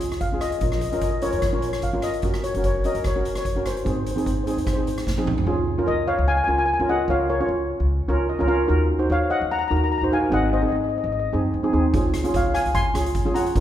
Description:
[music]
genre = calypso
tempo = 148 BPM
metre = 4/4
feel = swing 54% on 16ths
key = Db major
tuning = A4 = 440 Hz
[part]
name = steel pan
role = melody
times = 0.0-13.5 s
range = Bb4 to C6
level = -25 LUFS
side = left 3 dB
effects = none
[part]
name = steel pan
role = accompaniment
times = 0.0-13.6 s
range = C4 to F5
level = -24 LUFS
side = right 2 dB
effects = none
[part]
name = upright bass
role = bass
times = 0.0-13.6 s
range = Gb1 to Gb2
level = -26 LUFS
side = equal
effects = none
[part]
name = street-band drum kit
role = drums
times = 0.0-5.5, 11.9-13.6 s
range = hi-hat, kick drum, rim click, snare drum, toms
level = -26 LUFS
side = right 1 dB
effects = none
[sound]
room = wet recital hall reverb, RT60 1.6 s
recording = recorded in a church or concert hall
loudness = -20 LUFS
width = side -11 dB against mid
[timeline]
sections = 0.0-5.5 A section; 5.5-13.6 B section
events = drum fill 5.1-5.5; steel pan fill 7.9-8.7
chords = 0.0 Dbadd9; 0.6 Bbm; 2.2 Gb; 3.9 Ab; 5.5 Db6; 7.1 Bbm/Db; 8.7 Ebm; 10.3 Ab; 11.9 Db

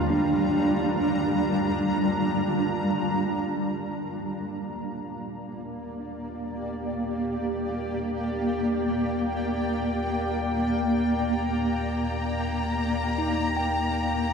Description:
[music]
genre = ambient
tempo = free time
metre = none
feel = none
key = Eb lydian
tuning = A4 = 443 Hz
[part]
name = granular cloud pad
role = sustained chords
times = 0.0-14.3 s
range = Eb2 to Bb5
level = -25 LUFS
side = equal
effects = built-in reverb
[part]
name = mellow tine electric piano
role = arpeggios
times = 0.0-14.3 s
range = Bb3 to G5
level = -33 LUFS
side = right 2 dB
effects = diffuse ambient delay
[part]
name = warm sub bass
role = bass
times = 3.8-14.3 s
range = Eb2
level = -35 LUFS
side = left 1 dB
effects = none
[part]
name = warm studio violin section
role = texture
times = 11.1-14.3 s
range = Bb5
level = -32 LUFS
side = left 2 dB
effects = none
[sound]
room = wet cathedral reverb, RT60 4.9 s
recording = in a vast, echoing space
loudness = -24 LUFS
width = side -6 dB against mid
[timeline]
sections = 0.0-3.9 A section; 3.9-14.3 B section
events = fade-in on sub bass 3.9-14.3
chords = 0.0 Gm7/Eb

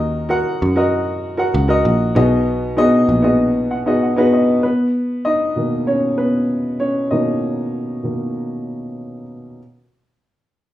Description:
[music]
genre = piano-driven pop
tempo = 97 BPM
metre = 4/4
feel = straight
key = B major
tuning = A4 = 439 Hz
[part]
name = dark upright piano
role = accompaniment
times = 0.0-9.6 s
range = B2 to F#5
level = -16 LUFS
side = equal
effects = none
[part]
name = picked electric bass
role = bass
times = 0.0-4.6 s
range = A#1 to F#2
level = -19 LUFS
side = equal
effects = none
[sound]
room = wet large studio reverb, RT60 0.8 s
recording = band playing live in one room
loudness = -15 LUFS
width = side -13 dB against mid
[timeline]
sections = 0.0-4.6 A section; 4.6-9.6 B section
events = upright piano fill 3.4-4.6; upright piano solo 4.6-9.6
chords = 0.0 D#m; 2.2 B6; 4.6 Bmaj7

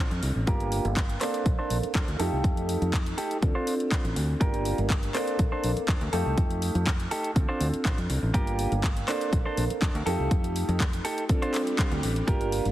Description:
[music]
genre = filtered disco house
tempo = 122 BPM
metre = 4/4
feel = straight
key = unclear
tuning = A4 = 445 Hz
[part]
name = warm baby grand piano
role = accompaniment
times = 0.0-12.7 s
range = A3 to A4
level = -31 LUFS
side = right 1 dB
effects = phaser, sidechain pumping, low-pass filter
[part]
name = clean electric guitar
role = riff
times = 0.0-12.7 s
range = D4 to C5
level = -33 LUFS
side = right 1 dB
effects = sidechain pumping, low-pass filter
[part]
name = fingered electric bass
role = bass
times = 0.0-12.7 s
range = G1 to F2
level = -29 LUFS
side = equal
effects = tube saturation, sidechain pumping, low-pass filter
[part]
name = house drum kit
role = drums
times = 0.1-12.7 s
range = handclaps, hi-hat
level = -34 LUFS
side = left 1 dB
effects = overdrive, sidechain pumping on hats, sidechain pumping on cymbals
[part]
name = electronic kick drum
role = drums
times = 0.5-12.4 s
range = none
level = -26 LUFS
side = equal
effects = overdrive
[part]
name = swell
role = sound effects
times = 11.5-12.3 s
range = none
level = -39 LUFS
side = right 1 dB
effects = none
[part]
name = tube shaker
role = percussion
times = 12.3-12.7 s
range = none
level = barely audible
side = none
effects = none
[sound]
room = light reverb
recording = heavily compressed radio sound, multiband compression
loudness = -24 LUFS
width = side -14 dB against mid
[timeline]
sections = 0.0-12.7 A section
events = filter sweep 0.0-12.7; swell 11.5-12.3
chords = 0.5 Gm7; 1.2 Bbmaj9; 2.2 F9; 3.4 Dm7; 4.4 Gm7; 5.1 Bbmaj9; 6.1 F9; 7.4 Dm7; 8.3 Gm7; 9.1 Bbmaj9; 10.1 F9; 11.3 Dm7

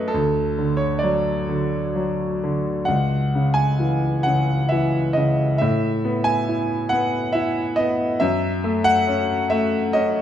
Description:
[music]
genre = classical, lyrical solo piano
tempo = 64-70 BPM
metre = 3/4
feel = rubato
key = C# minor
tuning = A4 = 440 Hz
[part]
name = bright grand piano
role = solo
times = 0.0-10.2 s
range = C#2 to G#5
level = -18 LUFS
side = equal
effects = none
[sound]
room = moderate recital hall reverb, RT60 1.4 s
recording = minimal, uncompressed stereo recording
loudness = -19 LUFS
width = side -10 dB against mid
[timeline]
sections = 0.0-10.2 A section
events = none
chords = 0.1 D; 2.9 C#m; 5.6 Asus2; 8.2 F#m

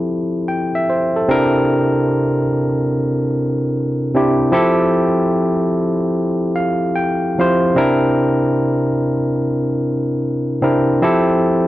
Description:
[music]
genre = hip hop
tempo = 74 BPM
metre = 4/4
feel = swing 64% on 16ths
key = F major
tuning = A4 = 441 Hz
[part]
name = barky tine electric piano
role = solo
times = 0.0-11.7 s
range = C3 to G5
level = -14 LUFS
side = equal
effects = none
[sound]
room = wet studio ambience, RT60 0.5 s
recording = cassette tape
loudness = -14 LUFS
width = side -15 dB against mid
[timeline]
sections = 0.0-11.7 A section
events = tine electric piano fill 6.1-7.8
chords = 0.0 Fmaj9; 1.3 C9; 4.5 Fmaj9; 7.8 C9; 11.0 Fmaj9

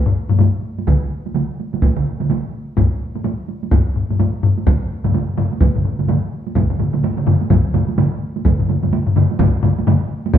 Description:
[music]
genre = japanese traditional, taiko drum ensemble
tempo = 127 BPM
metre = 4/4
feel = swing 60% on 16ths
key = none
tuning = none
[part]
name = taiko ensemble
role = percussion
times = 0.1-10.4 s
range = none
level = -18 LUFS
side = left 4 dB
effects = none
[part]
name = solo taiko drums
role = percussion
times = 0.3-10.4 s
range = none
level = -23 LUFS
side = right 6 dB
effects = none
[part]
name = taiko ensemble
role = percussion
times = 0.9-10.4 s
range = none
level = -21 LUFS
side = right 4 dB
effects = none
[part]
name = taiko ensemble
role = percussion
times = 0.9-10.4 s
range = none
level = -18 LUFS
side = equal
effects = none
[sound]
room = wet large studio reverb, RT60 1.3 s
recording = band playing live in one room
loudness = -15 LUFS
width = side -10 dB against mid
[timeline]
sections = 0.0-6.6 A section; 6.6-10.4 B section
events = none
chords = none

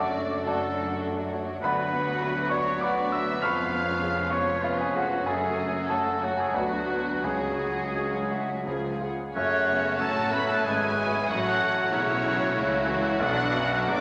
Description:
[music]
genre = classical, romantic movement for piano and orchestra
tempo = 83-104 BPM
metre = 3/4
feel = rubato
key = F# minor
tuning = A4 = 440 Hz
[part]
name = rich studio violin section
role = melody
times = 0.0-14.0 s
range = E#4 to D6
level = -37 LUFS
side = equal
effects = none
[part]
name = warm grand piano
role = melody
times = 0.0-14.0 s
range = A1 to E#6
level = -32 LUFS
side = equal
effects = none
[part]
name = clear clarinet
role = second line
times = 0.0-14.0 s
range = G#4 to D5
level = -38 LUFS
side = equal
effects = none
[part]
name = mellow silver concert flute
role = second line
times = 0.0-14.0 s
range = A4 to F#6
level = -36 LUFS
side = equal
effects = none
[part]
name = warm oboe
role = second line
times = 0.0-14.0 s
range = C#4 to E#5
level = -35 LUFS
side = equal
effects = none
[part]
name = warm symphonic violin section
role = second line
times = 0.0-14.0 s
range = A3 to G#4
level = -37 LUFS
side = equal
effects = none
[part]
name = rich studio viola section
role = accompaniment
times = 0.0-14.0 s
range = E3 to E4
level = -38 LUFS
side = equal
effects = none
[part]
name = warm bassoon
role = accompaniment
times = 0.0-14.0 s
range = E#3 to B3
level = -38 LUFS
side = equal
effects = none
[part]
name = mellow French horn section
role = sustained chords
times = 0.0-14.0 s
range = C#3 to F#4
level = -39 LUFS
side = equal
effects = none
[part]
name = rich studio cello section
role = bass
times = 0.0-14.0 s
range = C#2 to C#3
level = -42 LUFS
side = equal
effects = none
[part]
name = rich studio double bass section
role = bass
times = 0.0-14.0 s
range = E#1 to D2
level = -41 LUFS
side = equal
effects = none
[sound]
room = wet scoring stage reverb, RT60 1.6 s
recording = none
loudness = -26 LUFS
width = mono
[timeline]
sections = 0.0-9.4 A section; 9.4-14.0 B section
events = none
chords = 0.0 D/F#; 1.6 Bm/D; 3.4 C#7/E#; 5.3 F#m; 6.6 Bm/D; 7.2 C#sus4; 8.7 C#; 9.4 F#m; 11.3 F#m/A; 13.2 Bm

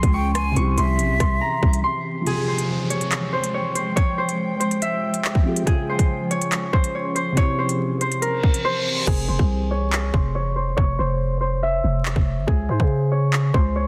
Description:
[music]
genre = hip hop, drill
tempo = 141 BPM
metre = 4/4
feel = half-time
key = F harmonic minor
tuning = A4 = 440 Hz
[part]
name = Celtic harp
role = melody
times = 0.0-13.9 s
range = Ab4 to Db6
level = -27 LUFS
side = equal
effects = low-pass filter
[part]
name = dark concert grand piano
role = accompaniment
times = 0.0-9.1 s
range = C3 to Ab4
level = -30 LUFS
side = equal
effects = none
[part]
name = ethereal airy pad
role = sustained chords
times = 0.0-9.1 s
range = E3 to G5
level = -32 LUFS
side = equal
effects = ensemble chorus, built-in reverb
[part]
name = growling 808-style bass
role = bass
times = 0.0-1.8, 9.1-13.9 s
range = F1 to Db3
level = -24 LUFS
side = equal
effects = none
[part]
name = drill drum kit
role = drums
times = 0.0-13.6 s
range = crash cymbal, handclaps, hi-hat, kick drum, rim click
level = -23 LUFS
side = equal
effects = none
[part]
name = breathy jazz flute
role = second line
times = 0.1-1.8 s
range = E5 to Ab5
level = -31 LUFS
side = equal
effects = tape echo
[part]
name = downlifter and reverse cymbal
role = sound effects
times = 2.3-9.1 s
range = none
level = -33 LUFS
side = equal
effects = none
[sound]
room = light reverb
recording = dense, heavily limited modern master, vinyl crackle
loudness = -21 LUFS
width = mono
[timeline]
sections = 0.0-2.3 A section; 2.3-9.1 B section; 9.1-13.9 C section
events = break 1.8-2.3; reverse cymbal 8.4-9.1; drums muted 8.6-9.1; hi-hats muted 9.1-13.9; filter sweep on harp 9.1-13.9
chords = 0.0 Db; 0.6 C; 2.3 Fmadd9; 5.7 Db; 7.4 C; 9.1 F5; 12.5 Db5

